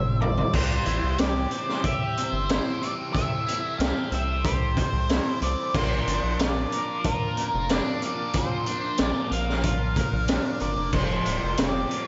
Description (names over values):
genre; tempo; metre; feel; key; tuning
psychedelic rock; 92 BPM; 4/4; straight; unclear; A4 = 441 Hz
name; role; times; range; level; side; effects
octave-fuzz lead guitar; melody; 0.0-12.1 s; Bb4 to F5; -33 LUFS; equal; distortion, tape echo
combo organ; sustained chords; 0.0-12.1 s; E3 to E6; -40 LUFS; equal; none
biting overdriven guitar; riff; 0.0-12.1 s; F2 to C5; -34 LUFS; equal; phaser
gritty driven synth bass; bass; 0.0-11.9 s; D1 to C2; -30 LUFS; equal; none
raw garage drum kit; drums; 0.2-12.1 s; crash cymbal, hi-hat, kick drum, snare drum, toms; -29 LUFS; equal; none
room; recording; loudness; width
light reverb, studio reverb; nothing above 7.8 kHz; -25 LUFS; mono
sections
0.6-12.1 A section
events
drum fill 0.0-0.6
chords
0.0 Cadd9; 0.6 C; 5.7 Bb; 10.9 Fadd9